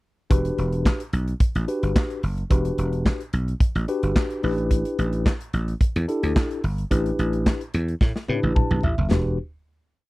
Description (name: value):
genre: early-eighties boogie funk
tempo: 109 BPM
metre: 4/4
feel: straight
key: E minor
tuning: A4 = 444 Hz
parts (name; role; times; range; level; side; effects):
- mellow tine electric piano; accompaniment; 0.3-9.4 s; C4 to A5; -26 LUFS; left 2 dB; medium stereo tremolo
- dry thumbed slap bass; bass; 0.3-9.4 s; E1 to A2; -24 LUFS; equal; none
- modern studio drum kit; drums; 0.3-9.2 s; handclaps, hi-hat, kick drum, snare drum, toms; -21 LUFS; equal; none
room: little or no reverb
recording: dry, close 1970s-style studio recording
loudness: -21 LUFS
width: side -20 dB against mid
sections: 0.3-9.1 verse; 9.1-10.1 final chord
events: drum fill 8.0-9.1; tine electric piano fill 8.3-9.1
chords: 0.3 Em9; 4.4 A7sus4; 9.1 Em9